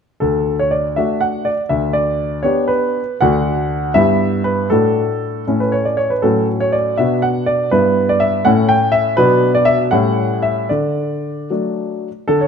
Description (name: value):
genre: classical-period piano sonatina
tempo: 75-83 BPM (dotted quarters)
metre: 6/8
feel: rubato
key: D major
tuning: A4 = 442 Hz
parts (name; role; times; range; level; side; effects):
- warm grand piano; solo; 0.2-12.5 s; D2 to G5; -14 LUFS; equal; none
room: moderate recital hall reverb, RT60 1.6 s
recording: close, detailed microphones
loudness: -14 LUFS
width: side -6 dB against mid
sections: 0.2-12.3 A section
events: none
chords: 0.2 D; 1.7 G/D; 3.2 D; 3.9 Em/G; 4.7 D/A; 5.5 A; 6.2 F#m/A; 7.0 Bm; 7.7 Em/G; 8.5 A; 9.2 Bm; 9.9 A7; 10.7 D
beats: | 0.21 0.97 | 1.71 2.44 | 3.21 3.95 | 4.70 5.47 | 6.23 6.99 | 7.73 8.46 | 9.19 9.93 | 10.71 11.51 | 12.29